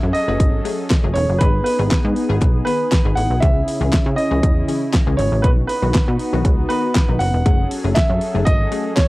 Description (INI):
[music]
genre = dance-pop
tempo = 119 BPM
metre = 4/4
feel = straight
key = C# minor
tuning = A4 = 439 Hz
[part]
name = warm grand piano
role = melody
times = 0.0-9.1 s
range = B4 to F#5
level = -23 LUFS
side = right 1 dB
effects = cassette tape
[part]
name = warm analog pad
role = sustained chords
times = 0.0-9.1 s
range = C#3 to A4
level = -25 LUFS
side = equal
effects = lush chorus, sidechain pumping, cassette tape
[part]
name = plucky analog bass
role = bass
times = 0.0-8.7 s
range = E1 to C#3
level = -20 LUFS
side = equal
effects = sidechain pumping
[part]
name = pop drum kit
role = drums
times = 0.1-9.1 s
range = handclaps, hi-hat, kick drum, snare drum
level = -17 LUFS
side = equal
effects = cassette tape
[part]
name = wavetable chord stab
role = accompaniment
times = 0.3-8.9 s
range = D#3 to B4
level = -27 LUFS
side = left 7 dB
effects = cassette tape
[part]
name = group handclap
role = percussion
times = 0.9-9.1 s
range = none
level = -33 LUFS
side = left 9 dB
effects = none
[sound]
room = light reverb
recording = home recording on cassette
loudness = -15 LUFS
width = side -20 dB against mid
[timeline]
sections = 0.0-9.1 A section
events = none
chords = 0.0 F#madd9; 1.4 G#m; 3.4 C#m; 5.4 B; 7.5 F#madd9